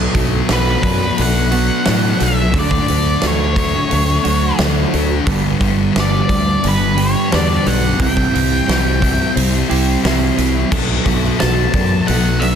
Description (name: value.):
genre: rock, shoegaze and dream pop.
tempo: 88 BPM.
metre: 4/4.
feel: straight.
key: unclear.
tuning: A4 = 438 Hz.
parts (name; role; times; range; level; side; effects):
direct-recorded clean electric guitar; arpeggios; 0.0-12.6 s; E3 to G4; -27 LUFS; right 5 dB; ensemble chorus, tape echo.
overdriven semi-hollow guitar; riff; 0.0-12.6 s; G2 to E4; -22 LUFS; right 10 dB; reverse reverb.
thick fuzz guitar; riff; 0.0-12.6 s; G2 to D4; -20 LUFS; left 9 dB; distortion, wide subtle chorus.
fingered electric bass; bass; 0.0-12.6 s; G1 to A2; -18 LUFS; equal; none.
huge arena drum kit; drums; 0.1-12.6 s; crash cymbal, hi-hat, kick drum, snare drum; -20 LUFS; right 1 dB; none.
octave-fuzz lead guitar; melody; 0.5-12.6 s; B4 to A5; -21 LUFS; equal; distortion, tape echo.
room: light reverb, studio reverb.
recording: dense, heavily limited modern master.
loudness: -13 LUFS.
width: side -8 dB against mid.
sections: 0.0-12.6 A section.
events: none.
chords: 0.0 Bm7; 2.5 Dmaj7; 5.3 G; 8.0 C; 10.7 Bm7.